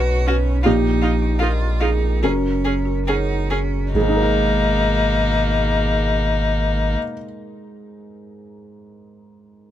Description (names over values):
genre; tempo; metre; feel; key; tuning
neoclassical piano and strings; 68-82 BPM; 4/4; rubato; G# minor; A4 = 442 Hz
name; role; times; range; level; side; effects
bright cello; second line; 0.0-7.0 s; B2 to F#4; -29 LUFS; right 5 dB; none
felt-muted upright piano; accompaniment; 0.0-9.7 s; A#1 to A#5; -23 LUFS; right 1 dB; none
folk marimba with medium hard mallets; arpeggios; 0.0-3.6 s; D#4 to C#6; -34 LUFS; left 2 dB; none
punchy sub bass; bass; 0.0-7.0 s; F#1 to B1; -21 LUFS; equal; none
rich violin; melody; 0.3-7.0 s; D#4 to G#4; -22 LUFS; left 5 dB; none
clear viola; accompaniment; 0.3-7.0 s; A#3 to D#4; -27 LUFS; right 2 dB; none
room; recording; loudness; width
little or no reverb; close, detailed microphones; -17 LUFS; side -11 dB against mid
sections
0.0-3.9 A section; 3.9-7.4 B section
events
slowing down 0.0-3.9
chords
0.0 Bsus2; 0.7 D#add9/A#; 2.2 F#add9; 3.9 G#madd9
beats
| 0.65 1.41 2.23 3.07 | 3.94 4.81 5.67 6.53